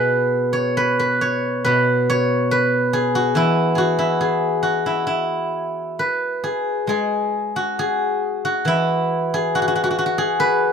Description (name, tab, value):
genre	chinese traditional, Chinese solo plucked strings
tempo	69 BPM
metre	2/4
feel	uneven beats, rubato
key	E gong mode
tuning	A4 = 440 Hz
part	steel-string zither	solo	0.0-10.7 s	B2 to C#5	-17 LUFS	equal	none
room	light reverb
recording	rough home demo mix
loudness	-17 LUFS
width	side -6 dB against mid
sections	0.0-6.9 A section; 6.9-10.7 B section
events	none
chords	none